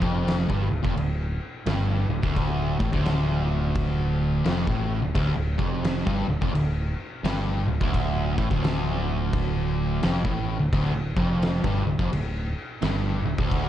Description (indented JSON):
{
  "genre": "stoner and doom metal",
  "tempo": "86 BPM",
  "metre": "4/4",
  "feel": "swing 63% on 8ths",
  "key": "D minor",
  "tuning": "A4 = 439 Hz",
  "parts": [
    { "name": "fuzz guitar", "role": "riff", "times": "0.0-13.7 s", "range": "D2 to A2", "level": "-25 LUFS", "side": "equal", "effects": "distortion" },
    { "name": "overdriven fingered electric bass", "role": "bass", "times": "0.0-13.7 s", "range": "D1 to A1", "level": "-28 LUFS", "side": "equal", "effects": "none" },
    { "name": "oversized low-tuned drum kit", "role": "drums", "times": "0.0-13.7 s", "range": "crash cymbal, kick drum, snare drum", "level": "-28 LUFS", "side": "equal", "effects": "none" }
  ],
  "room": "light reverb, studio reverb",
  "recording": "dark, warm production, nothing above 10.8 kHz",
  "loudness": "-22 LUFS",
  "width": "side -11 dB against mid",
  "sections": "0.0-13.7 A section",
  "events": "none",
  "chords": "0.0 Dm",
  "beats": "0.27 0.97 1.67 | 2.36 3.06 3.75 4.45 | 5.15 5.84 6.54 7.24 | 7.93 8.63 9.33 10.03 | 10.73 11.42 12.12 12.82 | 13.52"
}